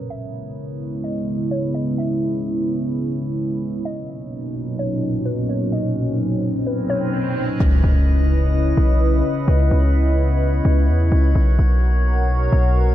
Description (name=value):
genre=hip hop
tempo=128 BPM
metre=4/4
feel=half-time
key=C# dorian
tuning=A4 = 440 Hz
part: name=hollow square pluck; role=melody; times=0.0-7.6 s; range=B4 to E5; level=-31 LUFS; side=left 2 dB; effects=chorus, low-pass filter, tape echo
part: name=dark analog pad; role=sustained chords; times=0.0-12.9 s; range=A#2 to F#5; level=-22 LUFS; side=equal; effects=chorus
part: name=drifting glass-harmonics texture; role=texture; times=0.0-12.9 s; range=A#3 to D#6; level=-32 LUFS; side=right 3 dB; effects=chorus, built-in reverb
part: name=swell and impact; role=sound effects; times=6.1-9.5 s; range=none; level=-29 LUFS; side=equal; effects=none
part: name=warm 808-style bass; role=bass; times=7.6-12.9 s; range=B1 to E2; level=-15 LUFS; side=equal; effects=none
room=light reverb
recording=dark, warm production, low-pass filter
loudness=-17 LUFS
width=side -13 dB against mid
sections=0.0-7.6 A section; 7.6-12.9 B section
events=filter sweep 0.0-7.6; swell 6.1-7.6; impact 7.6-9.5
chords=0.1 C#m9; 3.9 Bmaj9; 7.6 C#m9; 11.4 Bmaj9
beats=| 0.10 0.57 1.04 1.51 | 1.98 2.45 2.92 3.38 | 3.85 4.32 4.79 5.26 | 5.73 6.20 6.67 7.13 | 7.60 8.07 8.54 9.01 | 9.48 9.95 10.42 10.88 | 11.35 11.82 12.29 12.76